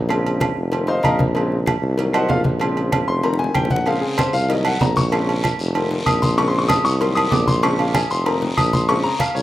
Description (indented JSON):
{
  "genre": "latin, salsa",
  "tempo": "191 BPM",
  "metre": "4/4",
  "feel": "straight",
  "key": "Bb minor",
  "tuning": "A4 = 440 Hz",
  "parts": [
    { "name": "bright upright piano", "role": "accompaniment", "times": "0.0-9.4 s", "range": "Db3 to Eb6", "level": "-21 LUFS", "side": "left 2 dB", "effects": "none" },
    { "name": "clear tuba", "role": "bass", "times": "0.0-9.4 s", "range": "F1 to C2", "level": "-22 LUFS", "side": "equal", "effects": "none" },
    { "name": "agogo bells and timbales", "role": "percussion", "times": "0.1-9.4 s", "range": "none", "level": "-25 LUFS", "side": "right 6 dB", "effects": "none" },
    { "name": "claves", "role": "percussion", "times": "0.1-9.4 s", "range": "none", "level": "-34 LUFS", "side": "left 3 dB", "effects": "none" },
    { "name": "congas", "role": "percussion", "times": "0.1-9.4 s", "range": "none", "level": "-23 LUFS", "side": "equal", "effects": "none" },
    { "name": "cowbell and bongos", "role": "percussion", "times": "0.1-9.4 s", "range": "none", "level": "-32 LUFS", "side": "left 5 dB", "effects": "none" },
    { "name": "guiro", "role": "percussion", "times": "3.9-9.4 s", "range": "none", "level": "-31 LUFS", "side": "left 2 dB", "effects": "none" }
  ],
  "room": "moderate plate reverb, RT60 2.7 s",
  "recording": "rough home demo mix",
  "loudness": "-16 LUFS",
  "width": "side -14 dB against mid",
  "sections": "0.0-9.4 A section",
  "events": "upright piano solo 0.0-9.4; drum fill 3.2-3.9, 8.3-8.9",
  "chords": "0.1 Bbm7; 0.7 F7sus4; 1.4 Bbm7; 2.0 Cm7b5; 2.6 Bbm7; 3.2 F7sus4; 3.9 Bbm7; 4.5 Cm7b5; 5.1 Bbm7; 5.8 F7sus4; 6.4 Bbm7; 7.0 Cm7b5; 7.6 Bbm7; 8.3 F7sus4; 8.9 Bbm7",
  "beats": "| 0.10 0.41 0.72 1.04 | 1.35 1.67 1.98 2.30 | 2.61 2.93 3.24 3.55 | 3.87 4.18 4.50 4.81 | 5.12 5.44 5.75 6.07 | 6.38 6.69 7.01 7.32 | 7.63 7.95 8.26 8.58 | 8.89 9.20"
}